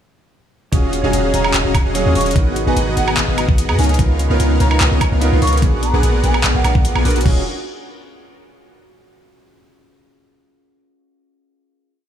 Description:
future bass; 147 BPM; 4/4; half-time; Eb minor; A4 = 442 Hz
warm grand piano; accompaniment; 0.7-7.4 s; Gb3 to Bb5; -24 LUFS; right 4 dB; vintage 12-bit sampler grit, sidechain pumping, tape echo
Celtic harp; arpeggios; 0.7-7.4 s; Db4 to Eb5; -29 LUFS; right 1 dB; sidechain pumping, tape echo
dense compressed supersaw; riff; 0.7-7.4 s; Cb4 to Ab5; -21 LUFS; left 2 dB; vintage 12-bit sampler grit, sidechain pumping, tape echo
warm 808-style bass; bass; 0.7-7.4 s; Eb1 to Ab2; -17 LUFS; equal; sidechain pumping
dubstep drum kit; drums; 0.7-7.3 s; crash cymbal, handclaps, hi-hat, woodblock; -21 LUFS; right 1 dB
electronic kick drum; drums; 0.7-7.3 s; -15 LUFS; equal
mellow hollow wooden flute; melody; 1.3-7.0 s; Gb5 to Db6; -26 LUFS; right 2 dB; sidechain pumping, digital delay
light reverb, digital ambience; small room ambience; -13 LUFS; side -9 dB against mid
0.7-7.3 drop; 7.3-8.9 final chord
drop 0.7-7.3
0.7 Ebm11; 2.4 Abm7; 3.8 Db13; 5.6 Bb7b9b13; 7.3 Ebm11
| 0.73 1.13 1.54 1.95 | 2.36 2.77 3.17 3.58 | 3.99 4.40 4.81 5.21 | 5.62 6.03 6.44 6.85 | 7.26

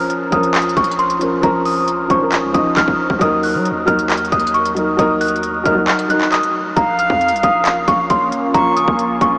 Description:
hip hop, trap; 135 BPM; 4/4; half-time; Bb minor; A4 = 440 Hz
celesta; melody; 0.0-9.4 s; Bb5 to Gb6; -16 LUFS; equal; diffuse ambient delay
dark grand piano; accompaniment; 0.0-6.8 s; F3 to C5; -19 LUFS; equal
warm 808-style bass; bass; 0.0-9.4 s; Bb1 to Gb3; -26 LUFS; equal
trap drum kit; drums; 0.1-9.3 s; handclaps, hi-hat, kick drum; -21 LUFS; equal
silver concert flute; second line; 6.8-9.0 s; F5 to Db6; -18 LUFS; equal; diffuse ambient delay
deep dark ambient pad; sustained chords; 7.6-9.4 s; Bb3 to F4; -21 LUFS; equal; chorus, built-in reverb
wet huge ambient reverb, RT60 8.0 s; dreamy mix soaked in reverb, vinyl crackle, small speaker sound; -13 LUFS; side -29 dB against mid
0.0-6.8 A section; 6.8-9.4 B section
kick muted 5.9-6.8
0.0 Bbm; 3.2 Ebm; 6.8 Bbm
0.10 0.54 0.99 | 1.43 1.88 2.32 2.77 | 3.21 3.65 4.10 4.54 | 4.99 5.43 5.88 6.32 | 6.77 7.21 7.66 8.10 | 8.54 8.99

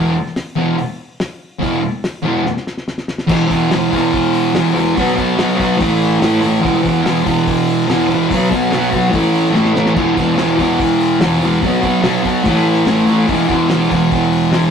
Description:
garage rock duo or trio; 144 BPM; 4/4; straight; A4 = 440 Hz
thick fuzz guitar; riff; 0.0-14.7 s; E2 to B3; -12 LUFS; equal; distortion
cloth-damped thuddy drum kit; drums; 0.3-14.6 s; crash cymbal, hi-hat, kick drum, snare drum; -23 LUFS; left 1 dB
wet stone room reverb, RT60 0.9 s; rough rehearsal-room recording, tube saturation; -13 LUFS; side -7 dB against mid
0.0-3.3 A section; 3.3-14.7 B section
drum fill 2.5-3.3, 9.5-10.0
0.0 E5; 5.0 B5; 5.8 A5; 6.6 E5; 8.3 B5; 9.1 A5; 10.0 E5; 11.6 B5; 12.5 A5; 13.3 E5
0.36 0.78 1.20 | 1.62 2.04 2.46 2.88 | 3.29 3.71 4.13 4.55 | 4.96 5.38 5.80 6.21 | 6.63 7.05 7.46 7.88 | 8.30 8.71 9.13 9.55 | 9.96 10.38 10.79 11.21 | 11.62 12.04 12.45 12.87 | 13.28 13.69 14.11 14.52

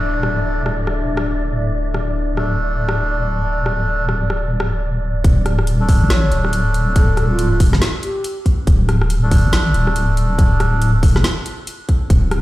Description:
deep dubstep; 140 BPM; 4/4; swing 60% on 16ths, half-time; A4 = 440 Hz
dark analog pad; sustained chords; 0.0-5.2 s; D4 to E5; -27 LUFS; left 5 dB; chorus
melodica; stabs; 0.0-11.0 s; A3 to A4; -25 LUFS; right 1 dB; vintage 12-bit sampler grit, dub echo
deep soft wobble bass; bass; 0.0-12.4 s; D1 to A1; -17 LUFS; equal; chorus
downlifter; sound effects; 0.0-1.8 s; -40 LUFS; right 1 dB
wind-like tuned noise texture; texture; 0.0-5.3 s; D5; -29 LUFS; right 3 dB; built-in reverb
garage drum kit; drums; 0.2-12.4 s; hi-hat, rim click, snare drum; -24 LUFS; equal; studio reverb
electronic kick drum; drums; 5.2-12.2 s; -15 LUFS; equal; studio reverb
breathy mellow low ney; melody; 6.1-8.4 s; F4 to C#5; -27 LUFS; right 1 dB; dub echo
light reverb; played on a big sound system in a bare room, stone room reverb; -15 LUFS; side -16 dB against mid
0.0-5.2 A section; 5.2-12.4 B section
drop 5.2-12.4
0.0 D5
| 0.10 0.53 0.96 1.39 | 1.82 2.25 2.67 3.10 | 3.53 3.96 4.39 4.82 | 5.25 5.67 6.10 6.53 | 6.96 7.39 7.82 8.24 | 8.67 9.10 9.53 9.96 | 10.39 10.82 11.24 11.67 | 12.10

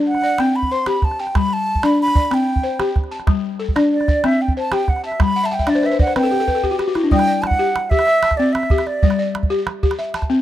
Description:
west african traditional, West African string and xylophone music; 125 BPM (dotted quarters); 12/8; straight; G major; A4 = 439 Hz
balafon; arpeggios; 0.0-10.4 s; G3 to A5; -19 LUFS; left 2 dB
wooden flute; melody; 0.1-9.3 s; D5 to C6; -19 LUFS; right 1 dB
calabash; percussion; 0.1-10.3 s; -18 LUFS; right 2 dB
little or no reverb; dry, close 1970s-style studio recording; -15 LUFS; side -12 dB against mid
0.0-7.1 A section; 7.1-10.4 B section
balafon fill 5.4-7.1; drum fill 6.5-7.1; flute solo 7.1-10.4
0.4 C5; 1.4 G; 2.3 C5; 3.3 G5; 4.2 C5; 5.2 G5; 6.2 C5; 7.1 G5; 8.1 C; 9.0 G5
0.39 0.87 | 1.36 1.84 2.32 2.80 | 3.28 3.76 4.24 4.72 | 5.20 5.68 6.16 6.64 | 7.12 7.60 8.08 8.56 | 9.04 9.51 9.99

